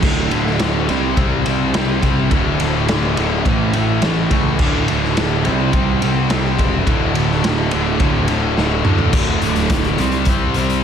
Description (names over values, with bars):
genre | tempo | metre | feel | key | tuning
quiet-loud alternative rock | 105 BPM | 4/4 | straight | D major | A4 = 440 Hz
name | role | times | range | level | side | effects
string machine, cellos | sustained chords | 0.0-9.1 s | A3 to E5 | -30 LUFS | left 1 dB | none
distorted electric guitar | riff | 0.0-10.8 s | D2 to C4 | -24 LUFS | equal | overdrive
overdriven semi-hollow guitar | riff | 0.0-10.8 s | D2 to C4 | -22 LUFS | right 10 dB | phaser
scooped high-gain guitar | riff | 0.0-10.8 s | D2 to C4 | -21 LUFS | left 12 dB | distortion
fuzz picked electric bass | bass | 0.0-10.8 s | D1 to C#2 | -21 LUFS | equal | overdrive
raw garage drum kit | drums | 0.0-10.8 s | crash cymbal, hi-hat, kick drum, ride cymbal, snare drum, toms | -20 LUFS | equal | none
room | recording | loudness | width
light reverb, studio ambience | none | -14 LUFS | side -8 dB against mid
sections
0.0-9.1 A section; 9.1-10.8 B section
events
drum fill 8.6-9.1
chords
0.0 D; 0.9 C; 2.3 D; 3.5 A; 4.6 D; 5.4 C; 6.9 D; 9.1 D5; 10.0 C5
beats
| 0.03 0.60 1.17 1.74 | 2.31 2.88 3.46 4.03 | 4.59 5.16 5.73 6.30 | 6.87 7.44 8.01 8.58 | 9.14 9.71 10.28